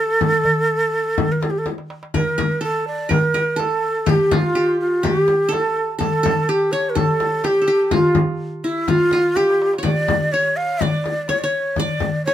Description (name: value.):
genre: Arabic maqam ensemble.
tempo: 125 BPM.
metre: 4/4.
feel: straight.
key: A maqam hijaz.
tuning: A4 = 443 Hz.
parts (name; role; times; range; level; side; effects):
breathy ney; melody; 0.0-12.3 s; E4 to F5; -18 LUFS; equal; none.
qanun; second line; 0.0-12.3 s; E4 to D5; -24 LUFS; right 2 dB; none.
darbuka; percussion; 0.2-12.3 s; none; -26 LUFS; right 1 dB; none.
frame drum; percussion; 0.2-12.1 s; none; -23 LUFS; left 5 dB; none.
room: moderate studio reverb, RT60 0.6 s.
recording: minimal, uncompressed stereo recording.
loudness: -16 LUFS.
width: side -11 dB against mid.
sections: 0.0-2.1 A section; 2.1-12.3 B section.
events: drum fill 1.7-2.1, 9.4-9.8.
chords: none.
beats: | 0.22 0.70 1.18 1.66 | 2.15 2.63 3.11 3.59 | 4.07 4.55 5.04 5.52 | 6.00 6.48 6.96 7.45 | 7.93 8.41 8.89 9.37 | 9.85 10.33 10.81 11.29 | 11.77 12.25.